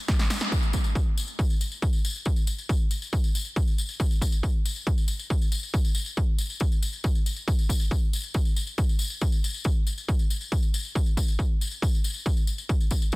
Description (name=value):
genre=trance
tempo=138 BPM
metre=4/4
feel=straight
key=none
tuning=none
part: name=electronic kick drum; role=drums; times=0.1-13.2 s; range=none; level=-24 LUFS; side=equal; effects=overdrive
part: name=techno drum kit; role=drums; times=0.1-0.5 s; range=hi-hat, snare drum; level=-30 LUFS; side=equal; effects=overdrive
part: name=tambourine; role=percussion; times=0.1-13.2 s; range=none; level=-34 LUFS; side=left 4 dB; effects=none
room=digital ambience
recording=dense, heavily limited modern master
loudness=-24 LUFS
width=side -23 dB against mid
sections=0.5-13.2 A section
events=drum fill 0.1-0.5; band accent 0.4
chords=none